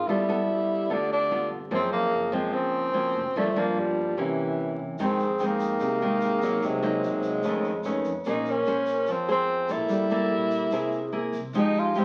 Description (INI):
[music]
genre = bossa nova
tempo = 146 BPM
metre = 4/4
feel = straight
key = F minor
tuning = A4 = 439 Hz
[part]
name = breathy tenor saxophone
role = melody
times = 0.0-12.0 s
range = E3 to F4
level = -29 LUFS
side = equal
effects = none
[part]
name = breathy mellow bass bansuri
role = second line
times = 0.0-12.0 s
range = F4 to C#5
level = -36 LUFS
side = equal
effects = none
[part]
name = nylon-string guitar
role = accompaniment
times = 0.0-12.0 s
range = F2 to C5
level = -30 LUFS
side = equal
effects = none
[part]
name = upright bass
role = bass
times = 0.1-12.0 s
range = F1 to F2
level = -46 LUFS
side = equal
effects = none
[part]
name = tube shaker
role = percussion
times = 5.0-12.0 s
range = none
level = -55 LUFS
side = equal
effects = none
[part]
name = clear grand piano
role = accompaniment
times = 5.4-10.1 s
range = Ab4 to G5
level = -40 LUFS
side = equal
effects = none
[sound]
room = moderate large studio reverb, RT60 1.1 s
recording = very old 78 rpm record, vinyl crackle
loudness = -26 LUFS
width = mono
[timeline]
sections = 0.0-12.0 A section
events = none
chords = 0.1 G9; 1.7 Gbmaj9#11; 3.3 Gm7; 4.2 C7b9; 5.0 Fm7; 6.6 Cm7b5; 7.4 F7alt; 8.3 Bbm9; 9.9 Gmadd9; 10.7 C7b13; 11.5 Fm9